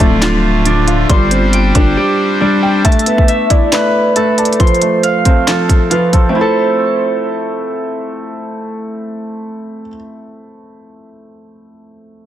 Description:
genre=hip hop, trap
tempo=137 BPM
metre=4/4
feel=half-time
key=A minor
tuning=A4 = 441 Hz
part: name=warm concert grand piano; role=accompaniment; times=0.0-12.3 s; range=D3 to A5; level=-16 LUFS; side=equal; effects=low-pass filter
part: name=pipe organ, trumpet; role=sustained chords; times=0.0-2.8 s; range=D3 to C5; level=-20 LUFS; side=equal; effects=none
part: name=Celtic harp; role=arpeggios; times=0.0-9.9 s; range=C4 to C6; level=-17 LUFS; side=left 1 dB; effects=low-pass filter, digital delay
part: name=growling 808-style bass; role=bass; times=0.0-2.0 s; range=D1 to G1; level=-15 LUFS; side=equal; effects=none
part: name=trap drum kit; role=drums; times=0.0-6.2 s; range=handclaps, hi-hat, kick drum, snare drum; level=-12 LUFS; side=equal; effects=none
part: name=warm velvety synth lead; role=second line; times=2.8-7.6 s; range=A4 to E5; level=-17 LUFS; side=right 4 dB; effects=chorus, digital delay
room=light reverb, small room ambience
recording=dense, heavily limited modern master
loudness=-10 LUFS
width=side -11 dB against mid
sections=0.0-2.8 A section; 2.8-6.3 B section; 6.3-9.9 C section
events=drums muted 2.0-2.8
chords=0.0 Dm; 1.1 Gsus4; 2.8 Asus2; 4.6 F; 6.3 Am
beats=0.22 0.66 | 1.09 1.53 1.97 2.41 | 2.85 3.29 3.72 4.16 | 4.60 5.04 5.47 5.91 | 6.35 6.79 7.23 7.66 | 8.10 8.54 8.98 9.42

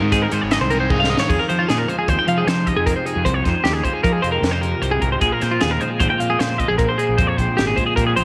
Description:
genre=math rock and midwest emo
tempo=153 BPM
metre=5/4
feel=straight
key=unclear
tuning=A4 = 440 Hz
part: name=twelve-string electric guitar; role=accompaniment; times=0.0-8.2 s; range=F2 to Ab4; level=-27 LUFS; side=equal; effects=subtle chorus
part: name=twelve-string electric guitar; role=arpeggios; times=0.0-8.2 s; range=F4 to G5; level=-22 LUFS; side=equal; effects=spring reverb, tape echo
part: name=crunchy overdriven guitar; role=riff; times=0.0-1.3 s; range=Ab2 to Ab4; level=-29 LUFS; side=equal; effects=phaser
part: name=fuzz fingered electric bass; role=bass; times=0.0-8.2 s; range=Ab1 to F3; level=-25 LUFS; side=equal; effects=overdrive
part: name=crisp fusion drum kit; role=drums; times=0.1-8.2 s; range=crash cymbal, hi-hat, kick drum, snare drum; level=-26 LUFS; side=equal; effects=none
room=light reverb, small room ambience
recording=none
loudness=-19 LUFS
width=mono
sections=0.0-1.3 A section; 1.3-8.2 B section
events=drum fill 0.9-1.3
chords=0.0 Ab6; 1.3 Fm9; 5.2 Fm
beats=0.12 0.51 0.90 | 1.29 1.69 2.08 2.47 2.87 | 3.26 3.65 4.04 4.44 4.83 | 5.22 5.62 6.01 6.40 6.80 | 7.19 7.58 7.98

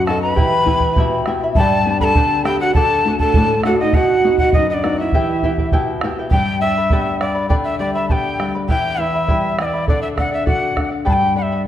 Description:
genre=andean folk, Andean ensemble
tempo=101 BPM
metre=2/4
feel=straight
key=unclear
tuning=A4 = 439 Hz
part: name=breathy quena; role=melody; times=0.0-11.7 s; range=D5 to B5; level=-20 LUFS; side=left 2 dB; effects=none
part: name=breathy mellow large pan pipes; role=second line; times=0.0-5.7 s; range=D4 to D5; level=-20 LUFS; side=right 4 dB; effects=none
part: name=charango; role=accompaniment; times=0.0-11.7 s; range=E4 to B5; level=-23 LUFS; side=left 1 dB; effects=none
part: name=flamenco guitar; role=accompaniment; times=0.0-11.7 s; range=E2 to G4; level=-22 LUFS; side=left 3 dB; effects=none
part: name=bombo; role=percussion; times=0.1-11.2 s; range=none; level=-20 LUFS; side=right 1 dB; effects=none
room=wet recital hall reverb, RT60 1.6 s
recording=dark, warm production, faint mains hum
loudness=-14 LUFS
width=side -11 dB against mid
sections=0.0-6.3 A section; 6.3-11.7 B section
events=none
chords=0.4 Em; 1.6 G; 2.8 D; 3.9 B; 5.1 Em; 6.3 G; 8.7 Em; 9.9 D; 11.1 G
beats=| 0.38 0.97 | 1.56 2.16 | 2.75 3.35 | 3.94 4.54 | 5.13 5.73 | 6.32 6.92 | 7.51 8.11 | 8.70 9.29 | 9.89 10.48 | 11.08 11.67

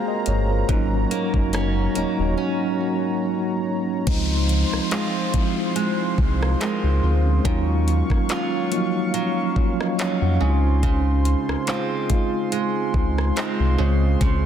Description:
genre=contemporary R&B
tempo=71 BPM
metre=4/4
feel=swing 54% on 16ths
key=Db major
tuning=A4 = 442 Hz
part: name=mellow tine electric piano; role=accompaniment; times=0.0-14.5 s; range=F3 to Ab5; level=-24 LUFS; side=equal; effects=medium stereo tremolo
part: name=warm analog pad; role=sustained chords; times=0.0-14.5 s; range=Gb3 to Db6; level=-30 LUFS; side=equal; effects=chorus
part: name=picked steel-string acoustic guitar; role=arpeggios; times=0.0-14.5 s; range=Ab2 to F4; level=-28 LUFS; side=right 4 dB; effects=ping-pong delay
part: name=sub bass with octave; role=bass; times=0.3-14.5 s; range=Eb1 to F2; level=-21 LUFS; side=equal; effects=none
part: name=smooth R&B drum kit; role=drums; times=0.3-14.4 s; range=crash cymbal, handclaps, hi-hat, kick drum, rim click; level=-25 LUFS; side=equal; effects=none
part: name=downlifter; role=sound effects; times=4.1-10.8 s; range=none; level=-33 LUFS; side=left 1 dB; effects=none
room=light reverb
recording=dense, heavily limited modern master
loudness=-19 LUFS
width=side -9 dB against mid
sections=0.0-4.1 A section; 4.1-14.5 B section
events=break 2.4-4.1; tine electric piano fill 9.1-10.8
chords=0.0 Gbmaj9#11; 0.7 Ab9sus4; 4.1 Dbmaj7; 7.4 Ebm9; 10.4 Bbm11 (rootless)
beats=| 0.69 1.53 2.38 3.22 | 4.07 4.91 5.76 6.60 | 7.45 8.29 9.14 9.98 | 10.83 11.67 12.52 13.36 | 14.21

